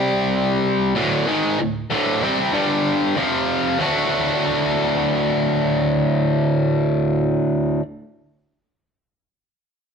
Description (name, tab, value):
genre	rock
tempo	95 BPM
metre	4/4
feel	straight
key	unclear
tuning	A4 = 440 Hz
part	biting overdriven guitar	solo	0.0-7.8 s	D2 to F#4	-17 LUFS	equal	none
room	moderate stone room reverb, RT60 1.0 s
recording	band playing live in one room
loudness	-17 LUFS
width	side -6 dB against mid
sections	0.0-3.8 A section; 3.8-6.3 B section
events	none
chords	0.0 C5; 1.0 D5; 2.5 G5; 3.2 F5; 3.8 D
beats	0.02 0.65 | 1.28 1.91 2.54 3.16 | 3.79 4.42 5.05 5.68